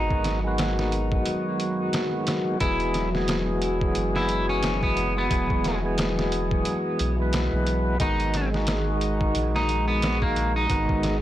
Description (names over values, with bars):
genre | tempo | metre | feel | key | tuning
trip hop | 89 BPM | 4/4 | swing 58% on 16ths | G# minor | A4 = 440 Hz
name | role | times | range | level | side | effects
electric guitar at the edge of break-up | melody | 0.0-11.2 s | A#3 to E4 | -29 LUFS | equal | vintage 12-bit sampler grit, dub echo
percussive tonewheel organ | accompaniment | 0.0-11.2 s | D#3 to B4 | -27 LUFS | equal | slow rotary speaker, tremolo, tape echo
dark analog pad | sustained chords | 0.0-11.2 s | F#3 to G#4 | -31 LUFS | equal | chorus
soft dub sub bass | bass | 0.0-11.2 s | E1 to B1 | -28 LUFS | equal | none
trip hop sampler-style drum kit | drums | 0.1-11.2 s | hi-hat, kick drum, snare drum | -28 LUFS | equal | none
room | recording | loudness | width
light reverb | blown-out, overdriven recording, overdrive | -22 LUFS | side -13 dB against mid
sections
0.0-11.2 A section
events
none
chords
0.0 G#m7; 2.6 E; 8.0 G#m7